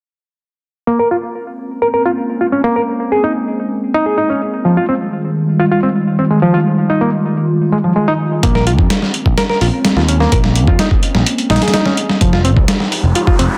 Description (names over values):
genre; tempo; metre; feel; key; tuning
breakbeat, breaks; 127 BPM; 4/4; straight; Bb dorian; A4 = 442 Hz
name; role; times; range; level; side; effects
warbly tape-like pad; sustained chords; 1.5-13.6 s; Eb3 to G4; -20 LUFS; equal; chorus, built-in reverb, phaser, sidechain pumping
barky reed electric piano; riff; 0.9-13.4 s; F3 to Bb4; -18 LUFS; equal; overdrive, tube saturation, low-pass filter, delay
picked electric bass; bass; 8.4-13.5 s; F1 to F2; -16 LUFS; equal; none
dusty soul sampler-style drum kit; drums; 8.4-13.5 s; hi-hat, kick drum, snare drum; -16 LUFS; equal; overdrive
riser; sound effects; 12.7-13.6 s; none; -26 LUFS; equal; none
room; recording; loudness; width
moderate plate reverb, RT60 2.0 s; dense, heavily limited modern master; -14 LUFS; mono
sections
0.9-13.6 A section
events
riser 12.7-13.6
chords
0.9 Bbm9; 4.7 Fm9; 8.4 Bbm9; 12.2 Fm9